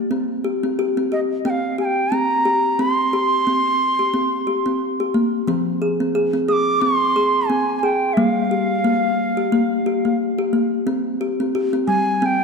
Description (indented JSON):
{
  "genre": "world meditative, meditative tuned percussion",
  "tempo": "89 BPM",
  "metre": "4/4",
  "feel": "swing 55% on 16ths",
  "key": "unclear",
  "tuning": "A4 = 439 Hz",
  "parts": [
    { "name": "kalimba", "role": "arpeggios", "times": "0.0-12.4 s", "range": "F3 to Ab4", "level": "-19 LUFS", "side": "left 2 dB", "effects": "none" },
    { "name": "bright reedy bansuri", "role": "melody", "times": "1.1-12.4 s", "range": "Eb5 to Eb6", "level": "-20 LUFS", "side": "right 2 dB", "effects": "diffuse ambient delay" }
  ],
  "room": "wet concert hall reverb, RT60 1.8 s, studio reverb",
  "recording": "dark, warm production",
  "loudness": "-17 LUFS",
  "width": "side -4 dB against mid",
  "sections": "0.0-12.4 A section",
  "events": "none",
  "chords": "0.1 C5; 5.5 Fm; 8.2 Gm; 10.9 C5"
}